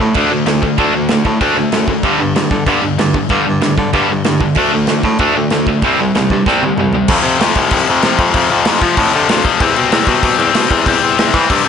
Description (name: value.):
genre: punk rock.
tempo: 190 BPM.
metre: 4/4.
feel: straight.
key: unclear.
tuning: A4 = 440 Hz.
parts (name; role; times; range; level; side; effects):
cranked stack guitar; riff; 0.0-7.1 s; G2 to D4; -17 LUFS; right 16 dB; overdrive.
tight distorted guitar; riff; 0.0-11.7 s; F2 to D4; -14 LUFS; left 7 dB; distortion.
clear baritone saxophone; bass; 0.0-11.7 s; C2 to F3; -18 LUFS; right 1 dB; none.
big rock drum kit; drums; 0.1-11.7 s; crash cymbal, kick drum, snare drum, toms; -18 LUFS; right 1 dB; none.
room: light reverb.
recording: nothing above 10.6 kHz.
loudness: -11 LUFS.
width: side -7 dB against mid.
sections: 0.0-7.1 A section; 7.1-11.7 B section.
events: drum fill 6.5-7.1.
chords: 0.0 D5; 2.0 G5; 4.6 D5; 5.8 C5; 7.1 F5; 9.6 C/E.